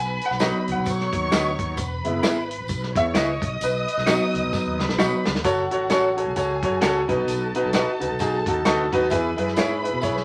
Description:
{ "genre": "uptempo 1960s-style soul", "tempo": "131 BPM", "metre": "4/4", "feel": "swing 58% on 8ths", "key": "B mixolydian", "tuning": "A4 = 444 Hz", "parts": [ { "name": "dark studio violin section", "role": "second line", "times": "0.0-10.2 s", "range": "F#4 to D#6", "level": "-32 LUFS", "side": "equal", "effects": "none" }, { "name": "clear concert grand piano", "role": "accompaniment", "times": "0.0-10.2 s", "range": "B2 to G#5", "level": "-26 LUFS", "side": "equal", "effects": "none" }, { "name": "mellow fretless electric bass", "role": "bass", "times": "0.0-10.2 s", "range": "E1 to B2", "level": "-33 LUFS", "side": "equal", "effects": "none" }, { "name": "warm soul drum kit", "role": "drums", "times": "0.2-10.2 s", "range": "hi-hat, kick drum, snare drum", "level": "-29 LUFS", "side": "equal", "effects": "none" }, { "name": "electric guitar through a small old amp", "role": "stabs", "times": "0.4-9.7 s", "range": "C#4 to E5", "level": "-26 LUFS", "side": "equal", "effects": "none" }, { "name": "tambourine", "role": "percussion", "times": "0.4-10.1 s", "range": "none", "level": "-43 LUFS", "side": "equal", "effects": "none" } ], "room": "moderate studio reverb, RT60 0.6 s", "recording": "vinyl crackle", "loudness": "-23 LUFS", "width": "mono", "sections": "0.0-5.4 A section; 5.4-10.2 B section", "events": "grand piano solo 0.0-5.4; drum fill 4.5-5.4", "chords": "0.0 B; 1.8 E; 3.4 B; 5.4 F#m; 7.1 B; 9.1 E" }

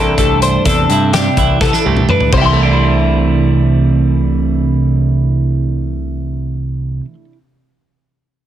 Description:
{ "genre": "math rock and midwest emo", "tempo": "251 BPM (eighths)", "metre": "7/8", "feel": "straight", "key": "C major", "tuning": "A4 = 440 Hz", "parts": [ { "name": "twelve-string electric guitar", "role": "accompaniment", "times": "0.0-7.4 s", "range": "G2 to E4", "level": "-16 LUFS", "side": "right 6 dB", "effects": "none" }, { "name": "twelve-string electric guitar", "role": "arpeggios", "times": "0.0-7.1 s", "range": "G4 to C6", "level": "-17 LUFS", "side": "left 7 dB", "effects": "analog chorus, plate reverb" }, { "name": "growling picked electric bass", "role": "bass", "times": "0.0-7.0 s", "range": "C2 to G2", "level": "-15 LUFS", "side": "equal", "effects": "overdrive" }, { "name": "loose indie drum kit", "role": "drums", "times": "0.2-2.4 s", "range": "crash cymbal, hi-hat, kick drum, snare drum, toms", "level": "-18 LUFS", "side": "equal", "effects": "none" } ], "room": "light reverb", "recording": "dense, heavily limited modern master", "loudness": "-11 LUFS", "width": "side -11 dB against mid", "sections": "0.0-2.3 A section; 2.3-5.7 B section", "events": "drum fill 1.6-2.3", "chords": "0.0 C69" }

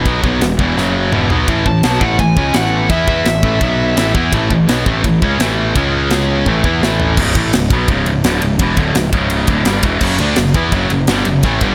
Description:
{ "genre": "heavy metal", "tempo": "169 BPM", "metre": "4/4", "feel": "straight", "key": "C# minor", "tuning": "A4 = 438 Hz", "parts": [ { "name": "heavy high-gain guitar", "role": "riff", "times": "0.0-11.7 s", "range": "C#2 to E4", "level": "-19 LUFS", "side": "equal", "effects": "distortion" }, { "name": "tight distorted guitar", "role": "riff", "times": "0.0-7.2, 10.0-11.7 s", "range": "E2 to E4", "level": "-22 LUFS", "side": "equal", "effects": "distortion" }, { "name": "fuzz picked electric bass", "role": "bass", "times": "0.0-11.7 s", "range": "C#1 to E2", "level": "-20 LUFS", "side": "equal", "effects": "overdrive" }, { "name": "tight metal drum kit", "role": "drums", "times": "0.1-11.7 s", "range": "crash cymbal, kick drum, ride cymbal, snare drum, toms", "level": "-20 LUFS", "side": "equal", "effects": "none" }, { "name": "high-gain lead guitar", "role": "melody", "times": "1.7-4.1 s", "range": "E5 to A5", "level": "-22 LUFS", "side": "equal", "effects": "distortion, tape echo" } ], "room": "little or no reverb", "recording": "none", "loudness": "-14 LUFS", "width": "mono", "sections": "0.0-7.2 A section; 7.2-11.7 B section", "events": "drum fill 0.8-1.5, 6.5-7.2", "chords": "0.0 E5; 0.8 F#5; 1.1 E5; 1.5 A5; 3.6 B5; 4.0 A5; 5.8 C#5; 6.5 A5; 7.2 C#m; 10.0 F#5" }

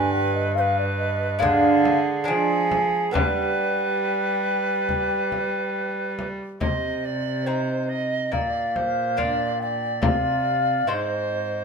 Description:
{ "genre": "classical, renaissance-style consort dance", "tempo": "70 BPM", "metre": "4/4", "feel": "straight", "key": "C minor", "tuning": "A4 = 440 Hz", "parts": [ { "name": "mellow hollow baroque flute", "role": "melody", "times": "0.0-11.6 s", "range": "C5 to Ab5", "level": "-24 LUFS", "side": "left 1 dB", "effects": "none" }, { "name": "tenor recorder", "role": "second line", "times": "0.0-11.6 s", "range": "Ab4 to Eb5", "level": "-27 LUFS", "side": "right 4 dB", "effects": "none" }, { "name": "lute", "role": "accompaniment", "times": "0.0-11.6 s", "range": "G2 to C5", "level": "-28 LUFS", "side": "right 2 dB", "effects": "none" }, { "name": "rich cello", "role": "bass", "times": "0.0-11.6 s", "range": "G2 to G3", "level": "-28 LUFS", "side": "right 1 dB", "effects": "none" }, { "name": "frame drum", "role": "percussion", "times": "1.4-10.4 s", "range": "none", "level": "-27 LUFS", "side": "left 2 dB", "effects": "none" } ], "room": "moderate stone room reverb, RT60 1.2 s", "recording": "minimal, uncompressed stereo recording", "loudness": "-21 LUFS", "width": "side -5 dB against mid", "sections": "0.0-6.6 A section; 6.6-11.6 B section", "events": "none", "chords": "0.0 G; 1.4 Ddim; 3.1 G; 6.6 Cm; 8.3 Bb; 10.0 Cm" }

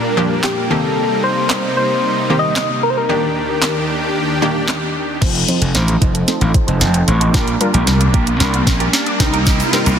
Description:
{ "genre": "dance-pop", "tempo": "113 BPM", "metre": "4/4", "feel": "straight", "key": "Bb major", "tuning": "A4 = 440 Hz", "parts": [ { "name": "soft struck synth lead", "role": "melody", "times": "0.0-4.7 s", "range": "G4 to Eb5", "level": "-19 LUFS", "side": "left 2 dB", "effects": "chorus, phaser, ping-pong delay" }, { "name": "supersaw chords", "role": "sustained chords", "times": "0.0-10.0 s", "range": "Eb2 to G4", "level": "-21 LUFS", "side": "equal", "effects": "sidechain pumping, low-pass filter" }, { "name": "wide unison pluck", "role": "accompaniment", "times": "0.2-10.0 s", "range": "Eb3 to C5", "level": "-20 LUFS", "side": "left 1 dB", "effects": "sidechain pumping, low-pass filter" }, { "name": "smooth R&B drum kit", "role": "drums", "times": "0.4-10.0 s", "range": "crash cymbal, handclaps, hi-hat, kick drum, snare drum", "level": "-18 LUFS", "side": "equal", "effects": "soft clipping on snare" }, { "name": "wide unison pluck", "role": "arpeggios", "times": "5.2-10.0 s", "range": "Bb4 to C7", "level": "-30 LUFS", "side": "left 2 dB", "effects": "lush chorus, sidechain pumping, low-pass filter, ping-pong delay" }, { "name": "twelve-string electric guitar", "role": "riff", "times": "5.2-10.0 s", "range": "A3 to C5", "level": "-25 LUFS", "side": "right 8 dB", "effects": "wide subtle chorus, low-pass filter" }, { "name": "gritty slap bass", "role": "bass", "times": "5.2-10.0 s", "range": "F1 to C2", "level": "-15 LUFS", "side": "equal", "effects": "overdrive, sidechain pumping" }, { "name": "riser", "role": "sound effects", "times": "6.6-10.0 s", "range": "none", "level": "-24 LUFS", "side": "right 1 dB", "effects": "none" }, { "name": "egg shaker", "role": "percussion", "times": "9.5-10.0 s", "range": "none", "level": "-31 LUFS", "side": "left 12 dB", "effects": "none" } ], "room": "light reverb, digital ambience", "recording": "dense, heavily limited modern master", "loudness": "-13 LUFS", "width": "side -8 dB against mid", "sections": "0.0-5.2 A section; 5.2-10.0 B section", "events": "build-up 5.2-10.0; drum fill 5.2-10.0; filter sweep 5.2-10.0; riser 6.6-10.0", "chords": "0.0 Bb6; 0.7 Cm7; 3.1 Ebmaj7; 5.2 F7; 7.3 Bb6; 9.2 Cm7" }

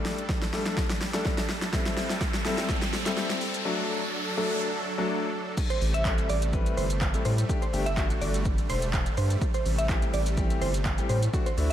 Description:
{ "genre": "dance-pop", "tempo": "125 BPM", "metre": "4/4", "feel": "straight", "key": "A dorian", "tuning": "A4 = 439 Hz", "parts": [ { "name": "clear concert grand piano", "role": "accompaniment", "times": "0.0-11.7 s", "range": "E3 to B4", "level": "-32 LUFS", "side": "left 3 dB", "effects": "sidechain pumping, slapback echo" }, { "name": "supersaw chords", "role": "sustained chords", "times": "0.0-11.7 s", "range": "C3 to A4", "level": "-36 LUFS", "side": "right 2 dB", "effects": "sidechain pumping" }, { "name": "riser", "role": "sound effects", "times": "0.0-4.6 s", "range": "none", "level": "-35 LUFS", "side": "equal", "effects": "none" }, { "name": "deep house drum kit", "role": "drums", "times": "0.1-11.7 s", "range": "crash cymbal, handclaps, hi-hat, kick drum, shaker, snare drum", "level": "-28 LUFS", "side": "equal", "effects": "overdrive" }, { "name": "glassy wavetable pluck", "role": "melody", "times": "5.7-11.7 s", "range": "C5 to E5", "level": "-32 LUFS", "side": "right 2 dB", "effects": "chorus, sidechain pumping" }, { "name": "saturated sub bass", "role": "bass", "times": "5.8-11.7 s", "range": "E1 to A2", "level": "-27 LUFS", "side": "equal", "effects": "sidechain pumping" } ], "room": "light reverb", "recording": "none", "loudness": "-25 LUFS", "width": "side -11 dB against mid", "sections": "0.0-5.6 A section; 5.6-11.7 B section", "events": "build-up 0.0-5.6; drum fill 0.0-3.7; riser 0.0-5.6; drop 5.6-11.7", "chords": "0.0 Gsus2; 1.7 Am7; 3.7 D; 5.6 Am7; 7.5 Gsus2; 9.4 Am7" }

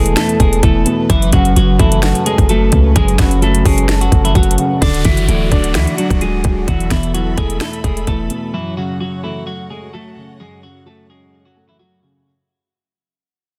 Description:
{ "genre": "hip hop, trap", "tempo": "129 BPM", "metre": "4/4", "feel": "half-time", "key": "F# minor", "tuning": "A4 = 441 Hz", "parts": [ { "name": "semi-hollow electric guitar", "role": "melody", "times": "0.0-12.0 s", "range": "E3 to D5", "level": "-22 LUFS", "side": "equal", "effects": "digital delay" }, { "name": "hollow clarinet-like synth lead", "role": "second line", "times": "0.0-4.8 s", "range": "F#5 to B5", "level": "-28 LUFS", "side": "equal", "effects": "chorus, digital delay" }, { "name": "dark grand piano", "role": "accompaniment", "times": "0.0-12.3 s", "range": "E2 to D4", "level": "-22 LUFS", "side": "equal", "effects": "none" }, { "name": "dark studio string section", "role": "sustained chords", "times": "0.0-12.2 s", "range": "E3 to B5", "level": "-30 LUFS", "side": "equal", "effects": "none" }, { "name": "warm 808-style bass", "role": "bass", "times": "0.0-8.3 s", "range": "D1 to D2", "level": "-18 LUFS", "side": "equal", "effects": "none" }, { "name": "trap drum kit", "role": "drums", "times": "0.1-8.4 s", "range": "finger snaps, hi-hat, kick drum, snare drum", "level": "-17 LUFS", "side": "equal", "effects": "soft clipping on snare" }, { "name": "downlifter", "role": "sound effects", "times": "4.8-8.5 s", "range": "none", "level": "-31 LUFS", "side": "equal", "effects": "none" } ], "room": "little or no reverb", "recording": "dense, heavily limited modern master", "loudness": "-14 LUFS", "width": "mono", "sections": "0.0-4.8 A section; 4.8-12.3 B section", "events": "fade-out 4.8-12.3", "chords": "0.0 Esus4; 1.1 F#m; 4.8 D; 6.7 Esus4; 8.5 F#m" }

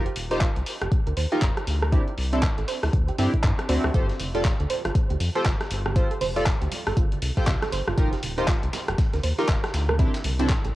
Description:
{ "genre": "deep house", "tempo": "119 BPM", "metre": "4/4", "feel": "swing 60% on 16ths", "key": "G minor", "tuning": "A4 = 437 Hz", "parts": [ { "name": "chorused polysynth", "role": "stabs", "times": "0.0-10.5 s", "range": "C4 to D5", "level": "-28 LUFS", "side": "equal", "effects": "sidechain pumping, cassette tape, analog delay" }, { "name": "round analog bass", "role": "bass", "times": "0.0-10.7 s", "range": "Eb1 to G2", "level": "-27 LUFS", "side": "equal", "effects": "sidechain pumping" }, { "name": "soft round pluck", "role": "arpeggios", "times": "0.1-10.7 s", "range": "E4 to D5", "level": "-33 LUFS", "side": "right 6 dB", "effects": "chorus, sidechain pumping, cassette tape, analog delay" }, { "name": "deep house drum kit", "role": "drums", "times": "0.1-10.7 s", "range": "handclaps, hi-hat, rim click", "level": "-31 LUFS", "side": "equal", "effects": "cassette tape" }, { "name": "electronic kick drum", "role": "drums", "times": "0.4-10.6 s", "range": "none", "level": "-23 LUFS", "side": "equal", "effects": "cassette tape" }, { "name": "breakbeat sampler-style drum kit", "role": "drums", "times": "3.9-10.7 s", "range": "hi-hat, snare drum, tambourine", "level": "-40 LUFS", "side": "equal", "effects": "none" }, { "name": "bongos and congas", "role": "percussion", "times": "4.1-10.7 s", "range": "none", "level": "-39 LUFS", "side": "right 7 dB", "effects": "none" } ], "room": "moderate spring reverb, RT60 2.0 s, digital ambience", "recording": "home recording on cassette", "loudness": "-21 LUFS", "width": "side -16 dB against mid", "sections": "0.0-10.8 A section", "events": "none", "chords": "0.0 F9sus4; 1.9 D9sus4; 3.9 G9sus4; 8.0 F9sus4; 10.0 D9sus4" }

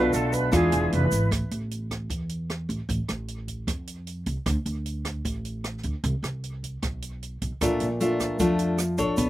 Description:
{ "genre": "bossa nova", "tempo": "152 BPM", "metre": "4/4", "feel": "straight", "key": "A minor", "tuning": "A4 = 442 Hz", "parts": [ { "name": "flute section", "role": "second line", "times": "0.0-1.3 s", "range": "G#4 to B4", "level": "-27 LUFS", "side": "right 3 dB", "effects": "none" }, { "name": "nylon-string guitar", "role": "accompaniment", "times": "0.0-1.3, 7.6-9.3 s", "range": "Bb2 to C#5", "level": "-24 LUFS", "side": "left 1 dB", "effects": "none" }, { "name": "upright bass", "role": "bass", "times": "0.0-9.3 s", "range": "E1 to F2", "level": "-29 LUFS", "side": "right 1 dB", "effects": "none" }, { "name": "open jazz drum kit", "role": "drums", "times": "0.1-9.3 s", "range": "hi-hat, kick drum, rim click", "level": "-33 LUFS", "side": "right 1 dB", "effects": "none" }, { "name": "tube shaker", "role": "percussion", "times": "0.1-1.3, 7.6-9.3 s", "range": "none", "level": "-38 LUFS", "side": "right 5 dB", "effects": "none" } ], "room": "little or no reverb", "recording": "recorded outdoors, with no room sound", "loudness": "-25 LUFS", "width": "side -15 dB against mid", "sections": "0.0-1.3 A section; 1.3-9.3 B section", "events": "none", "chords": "0.0 Bm7b5; 0.5 E7b9; 1.3 A5; 2.9 N.C.; 4.5 D5; 6.0 N.C.; 7.6 Bbmaj7" }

